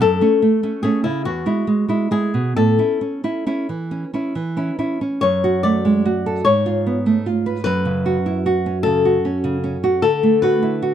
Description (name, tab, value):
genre	romantic duo for nylon-string guitar and classical guitar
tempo	44-51 BPM (dotted quarters)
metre	6/8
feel	rubato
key	A major, F# minor from 5.2 s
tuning	A4 = 440 Hz
part	flamenco guitar	melody	0.0-10.9 s	E4 to D5	-20 LUFS	left 6 dB	none
part	nylon-string guitar	accompaniment	0.0-10.9 s	E2 to B4	-18 LUFS	right 3 dB	none
room	little or no reverb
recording	dry, close 1970s-style studio recording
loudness	-16 LUFS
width	side -10 dB against mid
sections	0.0-5.2 A section; 5.2-10.9 B section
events	none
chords	0.0 F#m; 1.3 E; 2.6 A; 5.2 F#m; 6.5 C#7/G#; 7.7 F#m; 10.0 D